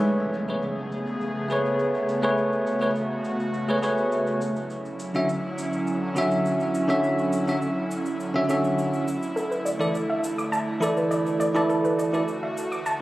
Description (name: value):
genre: sunset chillout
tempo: 103 BPM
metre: 4/4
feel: straight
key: A major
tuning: A4 = 438 Hz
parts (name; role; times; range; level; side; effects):
- bell-like tine electric piano; accompaniment; 0.0-12.2 s; D3 to E5; -24 LUFS; equal; auto-pan, ping-pong delay
- airy breathy pad; sustained chords; 0.0-13.0 s; C#3 to G#4; -28 LUFS; equal; chorus
- soft round pluck; arpeggios; 0.0, 9.4-13.0 s; A4 to D6; -29 LUFS; equal; chorus, cassette tape, ping-pong delay
- cabasa; drums; 0.0-13.0 s; none; -45 LUFS; equal; overdrive, low-pass filter on hats, low-pass filter on perc, low-pass filter on snare
- impact; sound effects; 0.0-2.4 s; none; -37 LUFS; equal; none
room: wet concert hall reverb, RT60 2.0 s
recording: recorded on a phone in the room, club reverb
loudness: -23 LUFS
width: side -16 dB against mid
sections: 0.0-13.0 A section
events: impact 0.0-2.4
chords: 0.0 Amaj9; 4.4 Dmaj9; 9.1 E7sus4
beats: | 0.05 0.63 1.21 1.80 | 2.38 2.96 3.54 4.13 | 4.71 5.29 5.88 6.46 | 7.04 7.62 8.21 8.79 | 9.37 9.95 10.54 11.12 | 11.70 12.28 12.87